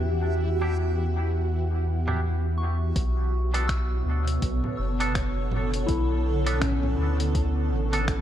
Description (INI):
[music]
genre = ambient dub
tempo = 82 BPM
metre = 4/4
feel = swing 59% on 16ths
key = B minor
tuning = A4 = 439 Hz
[part]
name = granular cloud pad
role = sustained chords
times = 0.0-8.2 s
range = B2 to C#5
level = -30 LUFS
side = right 1 dB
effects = built-in reverb
[part]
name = soft synth bell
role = arpeggios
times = 0.0-8.2 s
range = C#4 to E6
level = -35 LUFS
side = left 4 dB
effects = chorus, phaser, tape echo
[part]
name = soft dub sub bass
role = bass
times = 0.0-8.2 s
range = F#1 to E2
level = -25 LUFS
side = equal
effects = tube saturation
[part]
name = backwards swelling texture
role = texture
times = 0.0-3.0 s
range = E4 to E5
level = -42 LUFS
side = left 2 dB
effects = built-in reverb
[part]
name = twangy electric guitar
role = stabs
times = 0.6-8.1 s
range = B3 to A4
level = -35 LUFS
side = right 2 dB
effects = wide subtle chorus, dub echo
[part]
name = lo-fi sampler-style drum kit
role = drums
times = 2.1-8.2 s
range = congas, finger snaps, hi-hat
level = -35 LUFS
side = right 1 dB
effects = dub echo
[part]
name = electronic kick drum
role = drums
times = 3.0-8.2 s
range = none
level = -29 LUFS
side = equal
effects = none
[sound]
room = light reverb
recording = none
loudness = -23 LUFS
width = side -11 dB against mid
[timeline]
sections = 0.0-3.0 A section; 3.0-8.2 B section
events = none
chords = 0.0 Em; 3.0 Bm7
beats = | 0.03 0.76 1.49 2.23 | 2.96 3.69 4.42 5.15 | 5.88 6.62 7.35 8.08